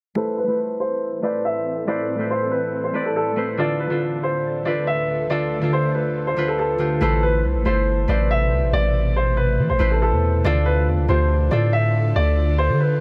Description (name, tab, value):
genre	hip hop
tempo	140 BPM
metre	4/4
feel	half-time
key	A minor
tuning	A4 = 440 Hz
part	dark grand piano	melody	0.2-13.0 s	A4 to E5	-26 LUFS	equal	low-pass filter
part	concert harp	accompaniment	0.2-13.0 s	D3 to D5	-26 LUFS	equal	low-pass filter
part	ethereal airy pad	sustained chords	1.0-13.0 s	D2 to A4	-32 LUFS	equal	ensemble chorus, built-in reverb, low-pass filter
part	long sustained 808-style bass	bass	7.0-13.0 s	G1 to E3	-22 LUFS	equal	none
room	light reverb, small room reverb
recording	none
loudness	-21 LUFS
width	mono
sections	0.2-7.0 A section; 7.0-13.0 B section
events	filter sweep 0.2-7.0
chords	0.2 Amadd9; 3.6 Dm; 7.0 Amadd9; 10.4 Dm